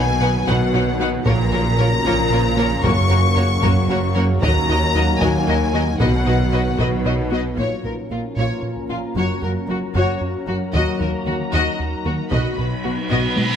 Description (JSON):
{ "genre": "cinematic, hybrid orchestral and electronic film score", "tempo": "76 BPM (dotted quarters)", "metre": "6/8", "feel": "straight", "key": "Bb phrygian", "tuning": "A4 = 440 Hz", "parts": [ { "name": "rich symphonic violin section", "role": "melody", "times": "0.0-13.6 s", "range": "F#5 to Db6", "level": "-25 LUFS", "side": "left 3 dB", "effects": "low-pass filter" }, { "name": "rich studio violin section", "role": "second line", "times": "0.0-13.4 s", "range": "F4 to F#5", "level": "-27 LUFS", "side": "left 3 dB", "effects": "none" }, { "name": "clear symphonic viola section", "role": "accompaniment", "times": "0.0-13.3 s", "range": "F#3 to Gb4", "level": "-28 LUFS", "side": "left 1 dB", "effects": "low-pass filter" }, { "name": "clear trombone section", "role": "sustained chords", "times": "0.0-7.3 s", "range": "Db3 to F#3", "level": "-29 LUFS", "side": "right 4 dB", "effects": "none" }, { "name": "glassy FM pad", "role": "sustained chords", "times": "0.0-13.6 s", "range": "Gb3 to B4", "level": "-27 LUFS", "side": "equal", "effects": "ensemble chorus, built-in reverb, low-pass filter" }, { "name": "warm French horn section", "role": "sustained chords", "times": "0.0-13.6 s", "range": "F3 to Bb4", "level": "-28 LUFS", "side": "left 5 dB", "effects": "low-pass filter" }, { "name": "soft round pluck", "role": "arpeggios", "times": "0.0-13.3 s", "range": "Eb3 to B4", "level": "-30 LUFS", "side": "left 5 dB", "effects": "none" }, { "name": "rubbery square bass", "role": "riff", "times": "0.0-13.5 s", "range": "Eb2 to B3", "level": "-24 LUFS", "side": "right 2 dB", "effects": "low-pass filter" }, { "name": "rich symphonic cello section", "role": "bass", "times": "0.0-13.2 s", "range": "Eb2 to B2", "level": "-25 LUFS", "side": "right 2 dB", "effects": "none" }, { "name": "rich symphonic double bass section", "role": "bass", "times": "0.0-13.2 s", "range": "Gb1 to Eb2", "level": "-25 LUFS", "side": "right 1 dB", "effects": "none" }, { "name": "solo taiko drums", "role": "drums", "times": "0.5-13.6 s", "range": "none", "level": "-26 LUFS", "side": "equal", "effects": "none" }, { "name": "reverse cymbal", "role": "sound effects", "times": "12.7-13.6 s", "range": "none", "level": "-25 LUFS", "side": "right 5 dB", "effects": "none" } ], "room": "moderate scoring stage reverb, RT60 1.5 s", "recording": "none", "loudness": "-17 LUFS", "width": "side -8 dB against mid", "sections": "0.0-7.6 A section; 7.6-13.6 B section", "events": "filter sweep 7.6-13.6; reverse cymbal 12.7-13.6; drum fill 13.1-13.6", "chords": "0.0 B; 1.3 Bbm; 2.8 Gb; 4.4 Ebm; 6.0 B; 7.6 Bbm; 9.2 Gb; 10.7 Ebm; 12.3 B" }